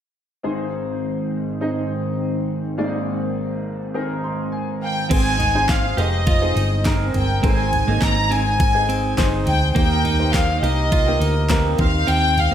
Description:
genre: piano-driven pop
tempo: 103 BPM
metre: 4/4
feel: straight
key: unclear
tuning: A4 = 440 Hz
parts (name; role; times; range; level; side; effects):
- bright grand piano; accompaniment; 0.4-12.5 s; Ab1 to C6; -24 LUFS; equal; analog chorus
- warm analog pad; sustained chords; 0.4-5.1 s; Ab2 to C4; -26 LUFS; right 1 dB; chorus
- warm studio violin section; melody; 4.8-12.5 s; Eb5 to Bb5; -21 LUFS; equal; none
- clean electric guitar; riff; 5.1-12.5 s; Bb3 to G4; -28 LUFS; right 7 dB; none
- hollow-body short-scale fingered electric bass; bass; 5.1-12.5 s; F1 to Eb2; -21 LUFS; equal; none
- pop drum kit; drums; 5.1-12.5 s; crash cymbal, handclaps, kick drum, ride cymbal, snare drum, toms; -22 LUFS; equal; none
room: moderate plate reverb, RT60 1.6 s, digital ambience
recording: dreamy mix soaked in reverb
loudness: -17 LUFS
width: side -10 dB against mid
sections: 0.4-5.1 A section; 5.1-12.5 B section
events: grand piano fill 3.9-5.1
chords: 0.4 Ab; 9.8 Eb; 11.8 Cm/Eb

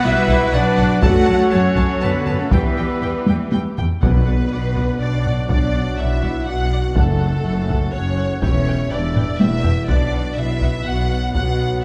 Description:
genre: cinematic, epic orchestral film score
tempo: 123 BPM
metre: 3/4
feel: straight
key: B minor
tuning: A4 = 440 Hz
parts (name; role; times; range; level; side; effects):
- rich symphonic violin section; melody; 0.0-11.8 s; A4 to A5; -31 LUFS; equal; none
- silver concert flute; second line; 0.0-3.5 s; A4 to F#5; -30 LUFS; equal; none
- warm symphonic violin section; second line; 0.0-11.8 s; A4 to F#5; -34 LUFS; equal; none
- rich symphonic viola section; accompaniment; 0.0-11.7 s; F#4 to G5; -33 LUFS; equal; none
- clear trombone section; sustained chords; 0.0-11.8 s; F#3 to F#4; -34 LUFS; equal; none
- warm French horn section; sustained chords; 0.0-11.8 s; A3 to F#4; -27 LUFS; equal; none
- warm woodwind section; sustained chords; 0.0-11.8 s; B3 to F#5; -32 LUFS; equal; none
- clear trumpet; stabs; 0.0-3.8 s; B4 to F#5; -32 LUFS; equal; none
- rich symphonic cello section; bass; 0.0-11.8 s; E2 to A3; -26 LUFS; equal; none
- rich symphonic double bass section; bass; 0.0-11.8 s; E1 to F#2; -25 LUFS; equal; none
- taiko ensemble; drums; 0.3-11.8 s; none; -23 LUFS; equal; none
- timpani; percussion; 4.0-4.7, 7.0-7.7 s; F#2 to B2; -27 LUFS; equal; none
room: moderate scoring stage reverb, RT60 1.6 s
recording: dark, warm production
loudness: -18 LUFS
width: mono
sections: 0.0-4.0 A section; 4.0-11.8 B section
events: drum fill 3.3-4.0, 9.2-9.9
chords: 0.0 Bm; 1.0 F#m; 2.5 Em; 4.0 Bm; 7.0 F#m; 8.4 Em; 9.9 Bm

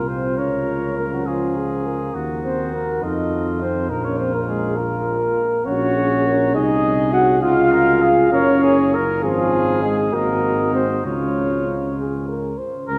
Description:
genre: classical, brass quintet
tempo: 67 BPM (dotted quarters)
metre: 6/8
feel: straight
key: Bb minor, Db major from 5.7 s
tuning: A4 = 440 Hz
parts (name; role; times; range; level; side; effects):
- mellow trumpet; melody; 0.0-13.0 s; Eb4 to Bb4; -29 LUFS; equal; none
- clear flugelhorn; second line; 0.0-12.0 s; F4 to Gb5; -28 LUFS; equal; none
- warm French horn; accompaniment; 0.0-12.9 s; F4 to C5; -30 LUFS; equal; none
- warm euphonium; accompaniment; 0.0-12.0 s; F3 to Gb4; -23 LUFS; equal; none
- mellow tuba; bass; 0.0-13.0 s; Gb1 to F2; -26 LUFS; equal; none
room: wet cathedral reverb, RT60 3.9 s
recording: none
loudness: -19 LUFS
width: mono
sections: 0.0-12.9 A section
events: none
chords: 0.4 Bbm/Db; 2.1 Ebm6; 3.0 F7; 3.9 Bb5; 5.7 Gb/Bb; 6.6 Ab/C; 7.4 Db; 8.3 Gb; 9.2 Fm/Ab; 10.1 Ab5; 11.1 Db

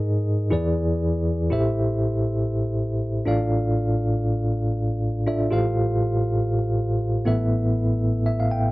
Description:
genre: pop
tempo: 120 BPM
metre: 4/4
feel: swing 55% on 16ths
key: A minor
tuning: A4 = 440 Hz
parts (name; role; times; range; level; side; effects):
- tine electric piano; solo; 0.0-8.7 s; A1 to G5; -20 LUFS; equal; fast tremolo
room: little or no reverb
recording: dry, close 1970s-style studio recording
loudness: -20 LUFS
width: side -19 dB against mid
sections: 0.0-1.5 A section; 1.5-8.7 B section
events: tine electric piano fill 8.0-8.7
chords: 0.0 D#sus4/G#; 0.5 E7; 1.5 Am7; 3.3 Dm/A; 5.5 Fadd9/A; 7.3 Esus4/A

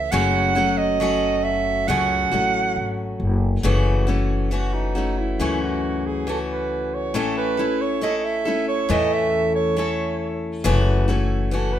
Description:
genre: acoustic folk duo or small band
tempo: 68 BPM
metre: 4/4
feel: straight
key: F# dorian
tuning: A4 = 441 Hz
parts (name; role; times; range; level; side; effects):
- warm soprano saxophone; second line; 0.0-11.8 s; D#4 to F#5; -23 LUFS; right 6 dB; none
- picked steel-string acoustic guitar; accompaniment; 0.0-11.8 s; F#2 to A4; -23 LUFS; left 3 dB; none
- upright bass; bass; 0.0-11.8 s; F#1 to E2; -24 LUFS; equal; none
room: moderate studio reverb, RT60 0.7 s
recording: minimal, uncompressed stereo recording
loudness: -19 LUFS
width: side -10 dB against mid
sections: 0.0-3.6 A section; 3.6-11.8 B section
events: soprano saxophone solo 0.0-3.6, 3.6-11.8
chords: 0.1 F#m; 3.6 F#m7; 7.1 A; 10.7 F#m7

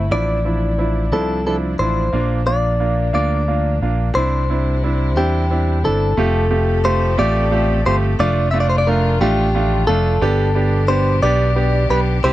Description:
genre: six-eight pop ballad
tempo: 59 BPM (dotted quarters)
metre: 6/8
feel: straight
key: F major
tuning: A4 = 438 Hz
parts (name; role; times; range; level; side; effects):
- direct-recorded clean electric guitar; melody; 0.0-12.3 s; G4 to E5; -20 LUFS; left 1 dB; none
- clear baby grand piano; accompaniment; 0.0-12.3 s; F3 to G4; -22 LUFS; right 4 dB; none
- rich chamber string section; sustained chords; 0.0-12.3 s; B2 to A4; -27 LUFS; left 3 dB; none
- fingered electric bass; bass; 0.0-12.3 s; F1 to E2; -18 LUFS; equal; none
room: little or no reverb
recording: dry, close 1970s-style studio recording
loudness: -15 LUFS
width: side -15 dB against mid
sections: 0.0-6.2 A section; 6.2-12.3 B section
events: none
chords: 0.1 Dmadd9/A; 2.1 Bb; 4.2 Cadd9; 6.2 Fadd9; 8.2 Dm/F; 10.2 G

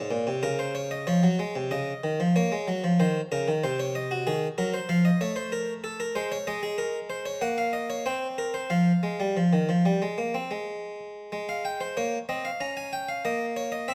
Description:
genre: classical, baroque-style two-part invention for harpsichord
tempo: 94 BPM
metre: 4/4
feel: straight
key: F minor from 6.2 s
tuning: A4 = 440 Hz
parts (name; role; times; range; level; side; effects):
- harpsichord; solo; 0.0-13.9 s; Ab2 to Bb5; -28 LUFS; equal; none
room: moderate recital hall reverb, RT60 1.7 s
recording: close, detailed microphones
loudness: -27 LUFS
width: mono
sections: 0.0-1.1 A section; 1.1-11.3 B section; 11.3-13.9 A section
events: none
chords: 0.0 Bbm; 1.1 Db; 2.4 Gb (rootless); 3.6 Cdim; 4.9 F; 6.2 Abadd9; 7.4 Gb/Bb; 8.1 Bbsus2/C; 8.7 Fm; 11.3 Fm/Ab; 12.6 Bbm/Db

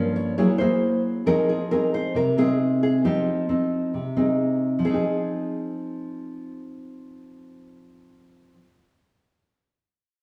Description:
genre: bossa nova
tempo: 135 BPM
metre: 4/4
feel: straight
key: F minor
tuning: A4 = 441 Hz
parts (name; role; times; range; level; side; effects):
- nylon-string guitar; melody; 0.0-8.5 s; G4 to Db5; -28 LUFS; equal; none
- nylon-string guitar; accompaniment; 0.0-8.7 s; G2 to Ab4; -25 LUFS; equal; none
room: wet stone room reverb, RT60 1.3 s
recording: band playing live in one room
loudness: -23 LUFS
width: mono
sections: 0.0-4.8 A section; 4.8-8.4 B section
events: none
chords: 0.4 Gb9; 1.3 Fm7

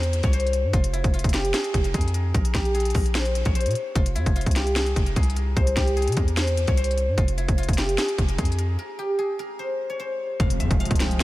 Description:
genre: hip hop, trap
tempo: 149 BPM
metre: 4/4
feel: half-time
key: F harmonic minor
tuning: A4 = 445 Hz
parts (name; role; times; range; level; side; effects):
- guzheng; melody; 0.0-11.2 s; E4 to G5; -27 LUFS; equal; analog delay
- long sustained 808-style bass; bass; 0.0-11.2 s; F1 to C3; -24 LUFS; equal; none
- trap drum kit; drums; 0.0-11.2 s; hi-hat, kick drum, snare drum; -24 LUFS; equal; none
- warm analog pad; sustained chords; 10.4-11.2 s; F3 to C4; -30 LUFS; equal; chorus
- impact; sound effects; 10.4-11.2 s; none; -30 LUFS; equal; none
room: light reverb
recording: none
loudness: -21 LUFS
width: side -17 dB against mid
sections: 0.0-10.4 A section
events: break 8.8-10.4; impact 10.4-11.2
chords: 0.0 C; 0.7 Fmadd11; 2.3 Bb7sus2; 4.0 F5; 5.6 C; 7.2 Fmadd11; 8.8 N.C.; 10.4 Fm

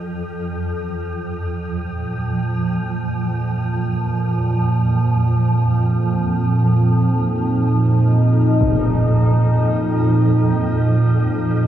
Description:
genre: dark ambient drone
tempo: free time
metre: none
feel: none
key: unclear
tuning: A4 = 439 Hz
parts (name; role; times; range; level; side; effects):
- swarming drone; drone; 0.0-11.7 s; F2 to F3; -21 LUFS; right 1 dB; built-in reverb
- sweeping resonant pad; sustained chords; 1.6-11.7 s; Bb2 to Eb4; -17 LUFS; right 1 dB; chorus
- impact; percussion; 8.6-8.9 s; none; -25 LUFS; equal; low-pass filter on sfx
room: moderate huge ambient reverb, RT60 7.5 s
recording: worn, warbling old tape, cassette tape, warbly pitch drift, small room reverb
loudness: -16 LUFS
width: side -11 dB against mid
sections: 0.0-11.7 A section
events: fade-in on impacts and reversed cymbals 0.0-11.7; filter sweep on synth drone 0.0-11.7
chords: 0.0 N.C.; 1.6 Bbsus4

